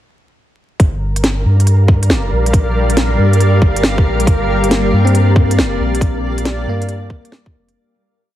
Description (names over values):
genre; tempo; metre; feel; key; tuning
future garage; 138 BPM; 4/4; swing 66% on 16ths; G minor; A4 = 440 Hz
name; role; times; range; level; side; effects
granular cloud pad; sustained chords; 1.6-7.7 s; G3 to F5; -19 LUFS; left 1 dB; built-in reverb, sidechain pumping
warm sub bass; bass; 0.8-7.7 s; F1 to G2; -14 LUFS; equal; tube saturation, sidechain pumping
electronic kick drum; drums; 0.8-7.5 s; none; -12 LUFS; equal; studio reverb
organic electronic drum kit; drums; 0.8-7.7 s; hi-hat, snare drum; -18 LUFS; equal; overdrive, studio reverb
flickering grainy texture; texture; 1.1-7.8 s; Bb4; -24 LUFS; right 2 dB; built-in reverb
bell-like tine electric piano; accompaniment; 4.7-7.9 s; Bb3 to C4; -21 LUFS; left 3 dB; sidechain pumping, analog delay
room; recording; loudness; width
light reverb, digital ambience; heavily compressed radio sound, multiband compression, vinyl crackle; -11 LUFS; side -12 dB against mid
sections
0.8-7.8 groove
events
fade-out 5.4-7.8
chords
0.8 Gm7; 4.3 Bb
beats
| 0.80 1.23 1.67 2.10 | 2.54 2.97 3.41 3.84 | 4.28 4.71 5.15 5.58 | 6.02 6.45 6.89 7.32